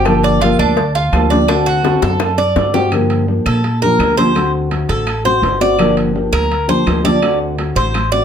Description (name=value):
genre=latin, Cuban son and guajira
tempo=167 BPM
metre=4/4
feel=straight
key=G minor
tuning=A4 = 440 Hz
part: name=nylon-string guitar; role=accompaniment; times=0.0-8.2 s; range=D3 to G4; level=-16 LUFS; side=left 2 dB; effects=none
part: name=Cuban tres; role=arpeggios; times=0.0-8.2 s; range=D4 to D5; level=-16 LUFS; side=right 1 dB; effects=none
part: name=upright bass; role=bass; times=0.0-8.2 s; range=G1 to Bb2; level=-19 LUFS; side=equal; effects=none
part: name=agogo bells and timbales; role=percussion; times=0.1-8.1 s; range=none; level=-24 LUFS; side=right 8 dB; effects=none
part: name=claves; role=percussion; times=0.1-8.1 s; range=none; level=-30 LUFS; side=left 5 dB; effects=none
part: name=cowbell and bongos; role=percussion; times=0.1-2.8 s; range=none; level=-21 LUFS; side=left 6 dB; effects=none
room=moderate studio reverb, RT60 0.6 s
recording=none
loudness=-12 LUFS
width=side -8 dB against mid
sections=0.0-2.9 A section; 2.9-8.2 B section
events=drum fill 1.8-2.9; Cuban tres solo 2.9-8.2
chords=0.1 Gm7; 1.5 D7; 2.9 Gm7; 4.4 D7; 5.8 Gm7; 7.2 D7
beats=| 0.06 0.41 0.77 1.13 | 1.49 1.85 2.21 2.56 | 2.92 3.28 3.64 4.00 | 4.36 4.71 5.07 5.43 | 5.79 6.15 6.51 6.87 | 7.22 7.58 7.94